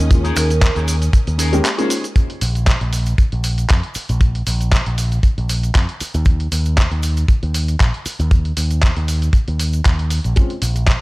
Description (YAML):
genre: nu-disco, nu disco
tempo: 117 BPM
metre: 4/4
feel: swing 54% on 16ths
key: Bb minor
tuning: A4 = 440 Hz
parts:
  - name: dark grand piano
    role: accompaniment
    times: 0.0-1.9, 10.4-10.5 s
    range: Ab3 to G4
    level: -22 LUFS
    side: left 1 dB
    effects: sidechain pumping, analog delay
  - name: clear studio string section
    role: sustained chords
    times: 0.0-2.1 s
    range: Db4 to Eb6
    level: -33 LUFS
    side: equal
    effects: sidechain pumping
  - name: picked electric bass with an envelope filter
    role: bass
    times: 0.0-10.9 s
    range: Bb1 to F2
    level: -18 LUFS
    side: equal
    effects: transformer saturation
  - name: dusty soul sampler-style drum kit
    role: drums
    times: 0.1-11.0 s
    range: finger snaps, handclaps, hi-hat, shaker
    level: -24 LUFS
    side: equal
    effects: studio reverb
  - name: kick drum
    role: drums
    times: 0.1-11.0 s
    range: none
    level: -14 LUFS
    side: equal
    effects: studio reverb
  - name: cabasa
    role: percussion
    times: 0.1-11.0 s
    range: none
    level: -35 LUFS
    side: right 5 dB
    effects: none
  - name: electric guitar with an envelope filter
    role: riff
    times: 0.2-2.0 s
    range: Db4 to C5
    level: -26 LUFS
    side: left 1 dB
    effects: wide subtle chorus, analog delay
  - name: vibraphone with hard mallets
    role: melody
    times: 0.4-0.8 s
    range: Bb4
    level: -27 LUFS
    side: right 4 dB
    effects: analog delay
room: studio reverb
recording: dry, gritty hardware recording, cassette tape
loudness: -15 LUFS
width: side -21 dB against mid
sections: 0.0-2.2 A section; 2.2-11.0 B section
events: drop 0.0-2.2; break 1.6-2.2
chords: 0.0 Eb7sus4; 2.2 Bb5; 6.0 Eb5; 10.4 Bbm7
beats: | 0.11 0.62 1.14 1.65 | 2.16 2.67 3.19 3.70 | 4.21 4.72 5.24 5.75 | 6.26 6.78 7.29 7.80 | 8.31 8.83 9.34 9.85 | 10.37 10.88